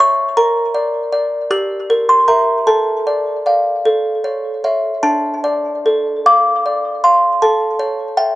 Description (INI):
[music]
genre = classical, lullaby for music box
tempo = 52 BPM (dotted quarters)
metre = 6/8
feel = rubato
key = D minor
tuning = A4 = 439 Hz
[part]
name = music box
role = solo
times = 0.0-8.4 s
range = D4 to E6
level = -13 LUFS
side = equal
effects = none
[sound]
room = wet studio reverb, RT60 0.6 s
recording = cassette tape, nothing above 10.7 kHz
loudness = -13 LUFS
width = side -17 dB against mid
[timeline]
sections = 0.0-8.4 A section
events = none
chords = 0.4 Bb; 1.5 Edim/G; 2.7 Dm/A; 3.9 A; 5.0 Dm; 7.4 A